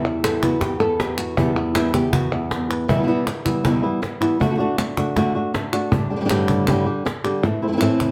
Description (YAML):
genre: flamenco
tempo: 158 BPM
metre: 4/4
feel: straight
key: E minor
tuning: A4 = 437 Hz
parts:
  - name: flamenco guitar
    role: melody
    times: 0.0-8.1 s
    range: E2 to B4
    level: -22 LUFS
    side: equal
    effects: none
  - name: flamenco guitar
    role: stabs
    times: 0.0-8.1 s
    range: E2 to G4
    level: -30 LUFS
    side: equal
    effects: none
  - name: palmas hand claps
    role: percussion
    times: 0.1-8.1 s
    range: none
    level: -31 LUFS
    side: equal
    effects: none
  - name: cajon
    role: percussion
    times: 0.2-8.1 s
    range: none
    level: -28 LUFS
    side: equal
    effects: none
room: moderate studio reverb, RT60 0.8 s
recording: none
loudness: -21 LUFS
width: mono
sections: 0.0-2.9 A section; 2.9-8.1 B section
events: nylon-string guitar solo 0.0-2.9; drum fill 7.4-8.1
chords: 0.0 Em; 4.4 D; 5.9 Gsus2; 7.4 Am